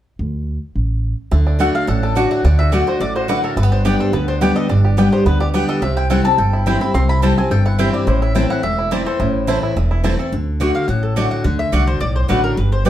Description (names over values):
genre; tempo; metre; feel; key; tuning
bluegrass; 213 BPM; 4/4; straight; unclear; A4 = 442 Hz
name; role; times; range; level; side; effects
upright bass; bass; 0.2-12.9 s; E1 to D2; -18 LUFS; equal; none
bluegrass banjo; melody; 1.3-10.3 s; A3 to A4; -25 LUFS; right 4 dB; none
picked steel-string acoustic guitar; accompaniment; 1.3-12.9 s; E2 to G4; -19 LUFS; left 1 dB; none
mandolin; stabs; 1.6-12.9 s; A3 to A5; -23 LUFS; right 2 dB; none
mandolin; melody; 1.7-12.9 s; A4 to C6; -23 LUFS; left 2 dB; none
room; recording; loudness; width
moderate studio reverb, RT60 0.7 s; heard from further back in the room; -14 LUFS; side -12 dB against mid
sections
0.2-1.3 A section; 1.3-10.3 B section; 10.3-12.9 B section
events
none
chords
0.2 D5; 1.3 D; 3.6 G; 5.8 C; 8.1 Am; 10.3 D